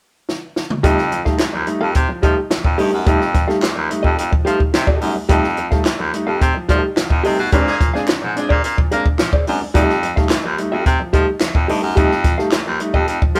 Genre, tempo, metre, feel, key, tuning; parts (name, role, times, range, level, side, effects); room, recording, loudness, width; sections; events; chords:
funk; 108 BPM; 4/4; straight; F mixolydian; A4 = 440 Hz
compact cocktail drum kit; drums; 0.3-13.4 s; hi-hat, kick drum, snare drum, toms; -20 LUFS; equal
hollow-body jazz guitar; accompaniment; 0.8-13.4 s; G4 to F5; -24 LUFS; equal
clear upright piano; stabs; 0.8-13.4 s; Bb2 to Eb4; -26 LUFS; equal
bright baritone saxophone; bass; 0.8-13.4 s; Eb2 to Bb3; -23 LUFS; equal
group handclap; percussion; 1.4-12.6 s; -30 LUFS; equal
clear horn section; second line; 7.7-8.5 s; F3 to Ab4; -29 LUFS; equal
moderate studio reverb, RT60 0.9 s; band playing live in one room; -17 LUFS; mono
0.8-13.4 A section
drum fill 0.3-0.8; band accent 7.5-9.8
0.0 N.C.; 0.8 F9; 7.5 Bb9; 9.8 F9